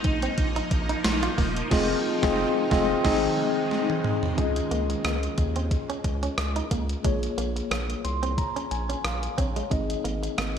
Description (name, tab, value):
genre	1980s-style pop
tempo	90 BPM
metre	4/4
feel	swing 55% on 16ths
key	unclear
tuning	A4 = 442 Hz
part	mellow tine electric piano	accompaniment	0.0-10.6 s	Bb3 to C6	-28 LUFS	left 2 dB	medium stereo tremolo
part	shimmering ambient pad	sustained chords	0.0-4.4 s	Eb3 to Eb4	-31 LUFS	right 1 dB	chorus, built-in reverb, phaser
part	direct-recorded clean electric guitar	riff	0.0-10.5 s	Ab3 to F4	-34 LUFS	right 5 dB	lush chorus, ping-pong delay
part	saturated sub bass	bass	0.0-10.6 s	Eb1 to Eb2	-31 LUFS	equal	none
part	gated 80s digital drum machine	drums	0.0-10.6 s	crash cymbal, hi-hat, kick drum, rim click, snare drum, tambourine, toms	-28 LUFS	equal	gated reverb, gated reverb snare
room	moderate concert hall reverb, RT60 2.2 s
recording	none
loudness	-23 LUFS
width	side -8 dB against mid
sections	0.0-4.4 A section; 4.4-10.6 B section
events	band accent 1.7-4.4; drum fill 3.7-4.4; tine electric piano fill 7.7-9.7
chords	0.0 Bbsus4; 1.7 Fm7; 3.0 Ab; 4.4 Dbadd9; 7.0 Bbm7; 9.7 Ab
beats	0.38 1.05 | 1.71 2.38 3.05 3.71 | 4.38 5.05 5.71 6.38 | 7.05 7.71 8.38 9.05 | 9.71 10.38